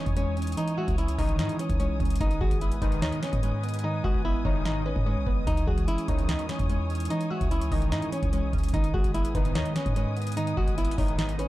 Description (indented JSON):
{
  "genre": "hip hop, trap",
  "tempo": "147 BPM",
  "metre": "4/4",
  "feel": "half-time",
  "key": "C# minor",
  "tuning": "A4 = 440 Hz",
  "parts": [
    { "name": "flamenco guitar", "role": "melody", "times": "0.0-11.5 s", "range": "C#4 to F#4", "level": "-33 LUFS", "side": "left 1 dB", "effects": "low-pass filter" },
    { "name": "glassy wavetable pluck", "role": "second line", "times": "0.0-11.5 s", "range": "G#4 to E5", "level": "-42 LUFS", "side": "left 1 dB", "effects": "chorus, tape echo" },
    { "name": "warbly lo-fi synth keys", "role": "accompaniment", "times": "0.0-11.5 s", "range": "D#3 to D#5", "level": "-33 LUFS", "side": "right 2 dB", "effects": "chorus, low-pass filter" },
    { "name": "muted studio string section", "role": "sustained chords", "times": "0.0-11.5 s", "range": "B4 to D#6", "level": "-40 LUFS", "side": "left 2 dB", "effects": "none" },
    { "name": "impact", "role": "sound effects", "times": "0.0-0.6 s", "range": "none", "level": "barely audible", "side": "none", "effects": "none" },
    { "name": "clean 808-style bass", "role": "bass", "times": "0.1-11.5 s", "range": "G#1 to G#2", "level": "-29 LUFS", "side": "equal", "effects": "none" },
    { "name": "booming analog drum machine", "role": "drums", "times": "0.1-11.5 s", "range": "hi-hat, kick drum, snare drum", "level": "-28 LUFS", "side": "equal", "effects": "overdrive" },
    { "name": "big bright polysynth", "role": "stabs", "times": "1.2-11.4 s", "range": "G#1 to D#3", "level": "-37 LUFS", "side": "left 1 dB", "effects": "lush chorus, tape echo" }
  ],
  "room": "digital ambience",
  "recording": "dark, warm production",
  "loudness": "-24 LUFS",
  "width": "side -16 dB against mid",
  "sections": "0.0-11.5 A section",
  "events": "impact 0.0-0.6; hi-hats muted 3.8-5.5",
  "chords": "0.0 C#madd9; 2.2 G#m; 5.5 C#madd9; 8.7 G#m"
}